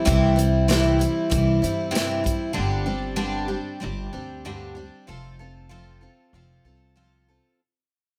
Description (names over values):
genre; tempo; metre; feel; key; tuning
folk rock and heartland rock; 96 BPM; 4/4; straight; unclear; A4 = 441 Hz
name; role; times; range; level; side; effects
picked twelve-string acoustic guitar; accompaniment; 0.0-7.6 s; G2 to A4; -26 LUFS; equal; none
upright bass; bass; 0.1-7.4 s; F1 to G2; -27 LUFS; equal; none
natural country drum kit; drums; 0.1-2.4 s; hi-hat, kick drum, snare drum; -28 LUFS; equal; none
room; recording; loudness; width
light reverb; none; -23 LUFS; mono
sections
0.0-7.6 A section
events
fade-out 0.0-7.6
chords
0.0 C; 2.6 Gsus4; 5.1 F